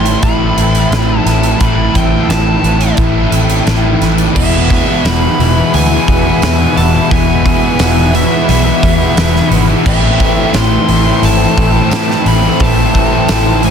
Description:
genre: rock, shoegaze and dream pop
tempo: 87 BPM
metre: 4/4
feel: straight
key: A minor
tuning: A4 = 439 Hz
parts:
  - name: fuzz lead guitar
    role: melody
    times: 0.0-13.7 s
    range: E5 to C6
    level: -19 LUFS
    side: left 1 dB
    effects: distortion, analog delay
  - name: lush unison pad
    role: sustained chords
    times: 0.0-13.7 s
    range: E3 to B5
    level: -22 LUFS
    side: left 1 dB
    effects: chorus, phaser
  - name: electric guitar at the edge of break-up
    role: arpeggios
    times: 0.0-13.7 s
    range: A3 to B4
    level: -22 LUFS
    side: right 2 dB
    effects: ensemble chorus, analog delay
  - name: overdriven electric guitar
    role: riff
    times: 0.0-13.7 s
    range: E2 to E4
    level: -17 LUFS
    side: right 11 dB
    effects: reverse reverb
  - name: thick fuzz guitar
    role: riff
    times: 0.0-13.7 s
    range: E2 to A3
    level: -16 LUFS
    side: left 12 dB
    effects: distortion, ensemble chorus
  - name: vintage muted fingered electric bass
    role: bass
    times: 0.0-13.7 s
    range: E1 to A2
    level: -15 LUFS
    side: equal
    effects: none
  - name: huge arena drum kit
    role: drums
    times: 0.1-13.7 s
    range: crash cymbal, hi-hat, kick drum, snare drum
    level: -16 LUFS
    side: equal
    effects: none
  - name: distorted electric guitar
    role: riff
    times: 4.4-13.7 s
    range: E2 to A3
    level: -20 LUFS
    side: equal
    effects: distortion
  - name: tambourine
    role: percussion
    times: 5.1-13.4 s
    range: none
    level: -28 LUFS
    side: right 16 dB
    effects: none
room: studio reverb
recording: dense, heavily limited modern master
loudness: -9 LUFS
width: side -7 dB against mid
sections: 0.0-4.4 A section; 4.4-13.7 B section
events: none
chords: 0.0 Amadd9; 4.4 E; 9.9 Am

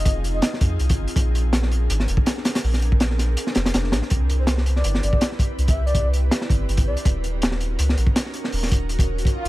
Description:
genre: drum and bass, jungle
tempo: 163 BPM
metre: 4/4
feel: swing 54% on 16ths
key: unclear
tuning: A4 = 440 Hz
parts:
  - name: breathy flute-like synth lead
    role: melody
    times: 0.0-0.5, 4.4-7.1 s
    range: C5 to E5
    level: -31 LUFS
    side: left 1 dB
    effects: analog chorus, dub echo
  - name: ethereal airy pad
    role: sustained chords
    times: 0.0-9.5 s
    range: C4 to B4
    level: -31 LUFS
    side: right 1 dB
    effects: ensemble chorus, built-in reverb
  - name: soft dub sub bass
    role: bass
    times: 0.0-9.5 s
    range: Eb1 to F2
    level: -21 LUFS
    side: equal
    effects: none
  - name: crunchy breakbeat drum kit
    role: drums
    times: 0.1-9.5 s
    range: hi-hat, kick drum, snare drum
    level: -21 LUFS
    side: equal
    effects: none
  - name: swell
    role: sound effects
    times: 9.3-9.5 s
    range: none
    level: -27 LUFS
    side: right 1 dB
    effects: none
room: small room ambience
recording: none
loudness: -18 LUFS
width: side -17 dB against mid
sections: 0.0-9.5 A section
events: swell 9.3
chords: 0.0 Fm7; 1.2 Bb9; 4.1 Cmaj7; 7.1 Ebm7

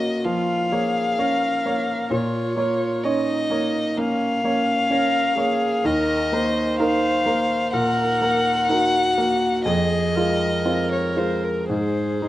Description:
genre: neoclassical piano and strings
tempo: 64 BPM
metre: 4/4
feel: rubato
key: Bb minor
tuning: A4 = 440 Hz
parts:
  - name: rich violin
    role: melody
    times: 0.0-12.3 s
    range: Bb4 to Gb5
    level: -23 LUFS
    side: left 2 dB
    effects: none
  - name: clear grand piano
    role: accompaniment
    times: 0.0-12.3 s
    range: Eb2 to Db5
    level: -23 LUFS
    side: right 1 dB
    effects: none
  - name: warm viola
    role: accompaniment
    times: 0.0-12.3 s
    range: Db4 to C5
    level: -26 LUFS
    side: right 1 dB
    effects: none
room: light reverb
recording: rough home demo mix, nothing above 10.4 kHz, faint mains hum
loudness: -19 LUFS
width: side -14 dB against mid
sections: 0.0-12.3 A section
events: none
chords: 0.0 Bbm; 5.9 Ebm; 9.7 Fm7; 11.7 Ab

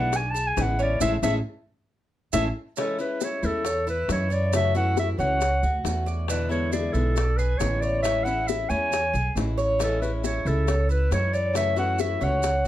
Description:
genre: latin, Cuban son and guajira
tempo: 137 BPM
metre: 4/4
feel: straight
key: A major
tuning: A4 = 441 Hz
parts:
  - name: warm clarinet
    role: melody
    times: 0.0-12.7 s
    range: A4 to A5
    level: -26 LUFS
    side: equal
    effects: none
  - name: picked acoustic archtop guitar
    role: accompaniment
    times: 0.0-12.5 s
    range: B2 to F#4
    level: -32 LUFS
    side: left 4 dB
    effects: none
  - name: Cuban tres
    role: arpeggios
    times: 0.0-12.7 s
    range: C#4 to D5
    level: -30 LUFS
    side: right 1 dB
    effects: none
  - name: upright bass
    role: bass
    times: 0.0-12.7 s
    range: A1 to F#2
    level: -26 LUFS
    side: right 1 dB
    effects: none
  - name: bongos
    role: percussion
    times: 0.1-12.7 s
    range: none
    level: -32 LUFS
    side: left 8 dB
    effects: none
  - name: maracas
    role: percussion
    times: 0.1-12.7 s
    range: none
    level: -38 LUFS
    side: right 8 dB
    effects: none
room: moderate studio reverb, RT60 0.5 s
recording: dark, warm production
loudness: -22 LUFS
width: side -13 dB against mid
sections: 0.0-2.8 A section; 2.8-12.7 B section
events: clarinet solo 0.0-2.8; band accent 1.0-2.8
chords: 0.0 E7; 1.0 Amaj7; 4.5 F#m7; 6.3 E7; 8.0 Amaj7; 11.6 F#m7

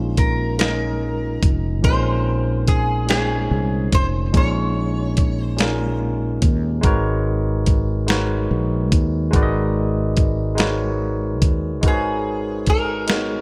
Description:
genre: slow six-eight R&B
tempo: 48 BPM (dotted quarters)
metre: 6/8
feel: straight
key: unclear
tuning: A4 = 444 Hz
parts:
  - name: lap resonator guitar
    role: melody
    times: 0.0-6.0, 11.9-13.4 s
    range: Ab4 to Db5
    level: -27 LUFS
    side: equal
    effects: lush chorus, tape echo
  - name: barky tine electric piano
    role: accompaniment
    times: 0.0-13.4 s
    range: Bb2 to Eb5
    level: -26 LUFS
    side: equal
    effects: overdrive
  - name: mellow fretless electric bass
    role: bass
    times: 0.0-13.4 s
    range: F1 to Eb2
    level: -25 LUFS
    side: equal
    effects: subtle chorus
  - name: dusty soul sampler-style drum kit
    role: drums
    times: 0.2-13.3 s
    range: hi-hat, kick drum, snare drum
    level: -21 LUFS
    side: equal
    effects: none
room: light reverb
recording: none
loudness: -20 LUFS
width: mono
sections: 0.0-13.4 A section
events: none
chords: 0.0 Bbm11; 6.8 Abm11

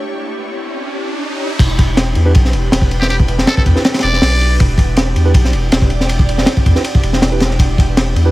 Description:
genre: drum and bass, jungle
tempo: 160 BPM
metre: 4/4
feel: straight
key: E dorian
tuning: A4 = 439 Hz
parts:
  - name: ethereal airy pad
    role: sustained chords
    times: 0.0-8.3 s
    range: D4 to D5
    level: -24 LUFS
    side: right 1 dB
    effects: ensemble chorus, built-in reverb
  - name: riser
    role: sound effects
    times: 0.0-1.6 s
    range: none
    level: -26 LUFS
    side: right 2 dB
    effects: none
  - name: saturated sub bass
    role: bass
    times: 1.6-8.3 s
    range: E1 to E2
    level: -15 LUFS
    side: equal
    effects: tube saturation
  - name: crunchy breakbeat drum kit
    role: drums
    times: 1.6-8.3 s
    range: crash cymbal, hi-hat, kick drum, ride cymbal, snare drum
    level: -13 LUFS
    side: equal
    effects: none
  - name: mellow tine electric piano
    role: stabs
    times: 2.3-8.3 s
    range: D4 to B4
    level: -22 LUFS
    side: right 4 dB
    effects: slow stereo tremolo, dub echo
  - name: trumpet with metal mute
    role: melody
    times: 3.0-4.6 s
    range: G4 to D5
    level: -20 LUFS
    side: equal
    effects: vintage 12-bit sampler grit, dub echo
room: small room reverb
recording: none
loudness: -11 LUFS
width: side -17 dB against mid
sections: 0.0-1.6 A section; 1.6-8.3 B section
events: riser 0.0-1.6; drop 1.6-8.3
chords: 0.0 Em7

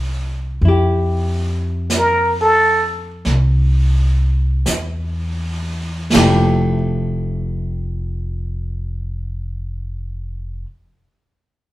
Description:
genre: jazz ballad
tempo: 40-47 BPM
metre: 4/4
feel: swing 68% on 8ths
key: F major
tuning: A4 = 440 Hz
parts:
  - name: archtop guitar, miked and amplified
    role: accompaniment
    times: 0.0-10.7 s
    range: F3 to G4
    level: -20 LUFS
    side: left 2 dB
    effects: none
  - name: upright bass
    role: bass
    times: 0.0-10.6 s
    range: F1 to F2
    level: -19 LUFS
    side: equal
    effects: none
  - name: vintage brush drum kit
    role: drums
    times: 0.6-6.9 s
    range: brushed snare drum, hi-hat, snare drum, splash cymbal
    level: -22 LUFS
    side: right 2 dB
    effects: none
  - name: trumpet with plunger mute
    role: melody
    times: 2.0-2.9 s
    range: A4 to Bb4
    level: -13 LUFS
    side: right 1 dB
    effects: none
room: moderate large studio reverb, RT60 1.0 s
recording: band playing live in one room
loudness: -16 LUFS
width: side -16 dB against mid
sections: 0.0-6.2 A section; 6.2-11.7 B section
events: slowing down 0.0-6.2; muted trumpet solo 0.0-6.2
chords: 0.0 Fmaj7sus2; 6.2 Fmaj9

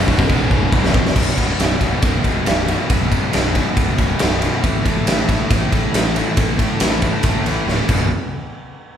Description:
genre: hard rock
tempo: 138 BPM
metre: 4/4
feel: straight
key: unclear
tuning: A4 = 440 Hz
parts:
  - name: distorted electric guitar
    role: riff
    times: 0.0-8.1 s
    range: B1 to A3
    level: -23 LUFS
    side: left 7 dB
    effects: overdrive
  - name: high-gain distorted guitar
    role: riff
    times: 0.0-1.2 s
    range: B1 to B2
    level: -24 LUFS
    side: left 1 dB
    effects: distortion
  - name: scooped high-gain guitar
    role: riff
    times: 0.0-8.1 s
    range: B1 to A3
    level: -23 LUFS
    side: right 6 dB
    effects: distortion
  - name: fuzz fingered electric bass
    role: bass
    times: 0.0-8.1 s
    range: B0 to A1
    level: -23 LUFS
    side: equal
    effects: overdrive
  - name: big rock drum kit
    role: drums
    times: 0.1-8.0 s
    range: crash cymbal, kick drum, ride cymbal, snare drum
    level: -17 LUFS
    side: equal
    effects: none
room: moderate large studio reverb, RT60 1.5 s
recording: band playing live in one room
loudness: -15 LUFS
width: side -9 dB against mid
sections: 0.0-1.2 A section; 1.2-8.1 B section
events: drum fill 0.3-1.2, 7.7-8.1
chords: 0.0 B5; 4.6 A5; 7.9 B5; 8.1 N.C.

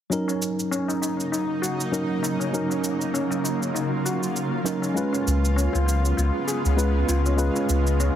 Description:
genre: sunset chillout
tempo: 99 BPM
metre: 4/4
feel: swing 56% on 16ths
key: Eb minor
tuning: A4 = 440 Hz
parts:
  - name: tine electric piano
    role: accompaniment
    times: 0.1-8.2 s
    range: Gb3 to Cb5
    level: -26 LUFS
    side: right 1 dB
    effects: auto-pan, low-pass filter, digital delay
  - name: shimmering ambient pad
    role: sustained chords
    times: 1.0-8.2 s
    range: Db3 to F4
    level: -29 LUFS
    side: right 1 dB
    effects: chorus, built-in reverb
  - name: cabasa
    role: drums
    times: 0.1-8.1 s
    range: none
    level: -32 LUFS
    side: right 1 dB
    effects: none
  - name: steel pan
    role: arpeggios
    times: 0.3-8.2 s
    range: Db4 to Ab4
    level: -30 LUFS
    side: left 4 dB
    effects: low-pass filter, digital delay
  - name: warm sub bass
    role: bass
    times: 5.3-8.1 s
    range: Db2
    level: -21 LUFS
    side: equal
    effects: none
room: light reverb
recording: heavily compressed radio sound, multiband compression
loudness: -22 LUFS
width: side -10 dB against mid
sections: 0.1-8.2 A section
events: none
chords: 0.1 Ebm7; 5.0 Db7

